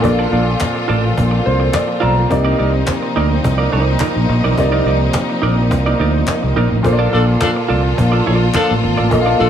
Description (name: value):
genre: disco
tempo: 106 BPM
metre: 4/4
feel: straight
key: Bb major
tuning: A4 = 444 Hz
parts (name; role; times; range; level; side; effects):
- clear baby grand piano; accompaniment; 0.0-9.5 s; Bb2 to Bb5; -20 LUFS; left 2 dB; none
- semi-hollow electric guitar; accompaniment; 0.0-9.5 s; Eb4 to D5; -22 LUFS; right 9 dB; none
- clear studio string section; sustained chords; 0.0-9.5 s; F3 to A4; -21 LUFS; left 1 dB; none
- fingered electric bass; bass; 0.0-9.5 s; Ab1 to D2; -16 LUFS; equal; none
- cajon; drums; 0.0-9.3 s; none; -21 LUFS; equal; none
- group handclap; percussion; 0.6-8.7 s; none; -29 LUFS; left 4 dB; none
- warm horn section; stabs; 7.1-9.5 s; F3 to A4; -20 LUFS; left 4 dB; none
room: small room ambience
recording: none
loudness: -13 LUFS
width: side -9 dB against mid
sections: 0.0-9.5 A section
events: grand piano fill 1.2-2.3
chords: 0.0 Bbmaj7; 2.3 Cm9; 6.8 Bbmaj7